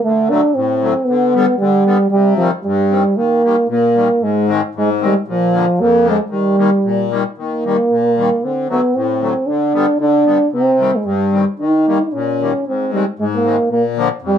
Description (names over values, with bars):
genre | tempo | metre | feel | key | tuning
alpine folk, alpine dance band | 114 BPM | 2/4 | rubato | Eb major | A4 = 443 Hz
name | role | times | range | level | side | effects
warm euphonium | melody | 0.0-14.4 s | F3 to Eb4 | -14 LUFS | right 2 dB | none
accordion | accompaniment | 0.1-14.4 s | F2 to C4 | -19 LUFS | left 7 dB | light tremolo tuning
room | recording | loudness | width
wet small room ambience, RT60 0.5 s | none | -13 LUFS | side -8 dB against mid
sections
0.0-7.4 A section; 7.4-14.4 A section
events
none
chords
0.0 D7; 1.1 G/D; 2.1 Cm; 3.2 Eb; 4.2 Ab; 5.3 Bb; 6.3 Eb; 8.4 D7; 9.5 G/D; 10.5 Cm; 11.6 Eb7; 12.7 Ab; 13.7 Bb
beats
| 0.03 0.55 | 1.07 1.59 | 2.12 2.65 | 3.18 3.71 | 4.24 4.76 | 5.28 5.80 | 6.32 6.85 | 7.38 7.91 | 8.43 8.96 | 9.48 10.00 | 10.53 11.05 | 11.59 12.12 | 12.66 13.19 | 13.70 14.22